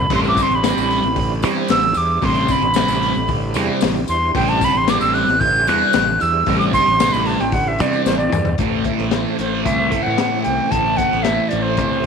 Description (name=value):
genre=psychedelic rock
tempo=113 BPM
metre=4/4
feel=straight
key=unclear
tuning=A4 = 444 Hz
part: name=breathy bright concert flute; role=melody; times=0.0-12.1 s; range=C5 to G6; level=-18 LUFS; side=right 1 dB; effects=slapback echo
part: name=tonewheel organ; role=sustained chords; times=0.0-12.1 s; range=G3 to C5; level=-28 LUFS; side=right 12 dB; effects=chorus vibrato, fast rotary speaker
part: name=fuzz fingered electric bass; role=bass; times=0.0-12.0 s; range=A1 to A2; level=-23 LUFS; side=equal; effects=overdrive
part: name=thick fuzz guitar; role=riff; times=0.1-12.1 s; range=A2 to C4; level=-21 LUFS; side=equal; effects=distortion, phaser
part: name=crunchy breakbeat drum kit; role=drums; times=0.1-12.1 s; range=crash cymbal, hi-hat, kick drum, snare drum, toms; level=-23 LUFS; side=left 6 dB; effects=none
part: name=tambourine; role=percussion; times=0.1-8.5 s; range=none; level=-38 LUFS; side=left 17 dB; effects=none
room=light reverb, small room ambience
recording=1960s-style stereo with parts hard left and right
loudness=-15 LUFS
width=side -6 dB against mid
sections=0.0-8.6 A section; 8.6-12.1 B section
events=flute solo 0.0-8.6; drum fill 8.1-8.6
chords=0.1 Cadd9/A; 8.6 Am